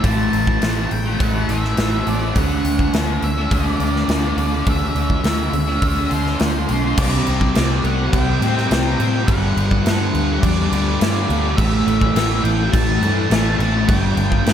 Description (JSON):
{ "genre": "rock, shoegaze and dream pop", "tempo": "104 BPM", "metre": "4/4", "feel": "straight", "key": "C lydian", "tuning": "A4 = 439 Hz", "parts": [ { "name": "octave-fuzz lead guitar", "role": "melody", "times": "0.0-14.5 s", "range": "C5 to A5", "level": "-26 LUFS", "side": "equal", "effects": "distortion, analog delay" }, { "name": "fuzz guitar", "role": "riff", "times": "0.0-14.5 s", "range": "G2 to D4", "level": "-20 LUFS", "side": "left 1 dB", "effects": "distortion, wide subtle chorus" }, { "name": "vintage muted fingered electric bass", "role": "bass", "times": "0.0-14.5 s", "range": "G1 to A2", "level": "-21 LUFS", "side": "equal", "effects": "none" }, { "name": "big rock drum kit", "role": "drums", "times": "0.0-14.5 s", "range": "crash cymbal, hi-hat, kick drum, snare drum", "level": "-21 LUFS", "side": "equal", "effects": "none" } ], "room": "wet lush hall reverb, RT60 1.6 s, small room ambience", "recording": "dreamy mix soaked in reverb", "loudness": "-16 LUFS", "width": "side -9 dB against mid", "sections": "0.0-7.0 A section; 7.0-14.5 B section", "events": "none", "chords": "0.0 A5; 2.4 Dsus2; 7.0 Csus2; 9.3 G5; 11.6 A5; 13.9 G5", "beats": "| 0.04 0.62 1.20 1.77 | 2.35 2.93 3.51 4.09 | 4.67 5.25 5.82 6.40 | 6.98 7.55 8.13 8.71 | 9.28 9.86 10.43 11.01 | 11.58 12.16 12.73 13.31 | 13.88 14.46" }